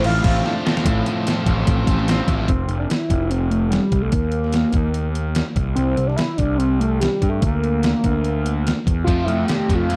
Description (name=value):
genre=indie rock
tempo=146 BPM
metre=4/4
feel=straight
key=F major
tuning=A4 = 440 Hz
part: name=overdriven synth lead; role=melody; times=0.0-10.0 s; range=G3 to F5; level=-25 LUFS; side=equal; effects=chorus
part: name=breathy trumpet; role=second line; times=0.0-0.9 s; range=C4 to E4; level=-38 LUFS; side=equal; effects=none
part: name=tonewheel organ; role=sustained chords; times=0.0-0.8 s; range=F3 to A5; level=-38 LUFS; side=equal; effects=none
part: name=crunchy overdriven guitar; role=riff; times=0.0-2.5, 9.1-10.0 s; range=A2 to F4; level=-28 LUFS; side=equal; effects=lush chorus
part: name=distorted electric guitar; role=riff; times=0.0-2.5, 9.1-10.0 s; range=A2 to A4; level=-27 LUFS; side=equal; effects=distortion
part: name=fuzz picked electric bass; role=bass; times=0.0-10.0 s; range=F1 to G2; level=-24 LUFS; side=equal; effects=overdrive
part: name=gated 80s digital drum machine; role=drums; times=0.0-10.0 s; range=crash cymbal, hi-hat, kick drum, snare drum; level=-24 LUFS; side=equal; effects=gated reverb, gated reverb snare, overdrive
room=little or no reverb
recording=dry, close 1970s-style studio recording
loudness=-20 LUFS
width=mono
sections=0.8-2.5 A section; 2.5-10.0 B section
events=drum fill 0.4-0.8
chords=0.0 Fmaj7/A; 2.5 F5; 4.1 Eb5; 5.6 C5; 7.4 Bb/D; 9.1 Fmaj7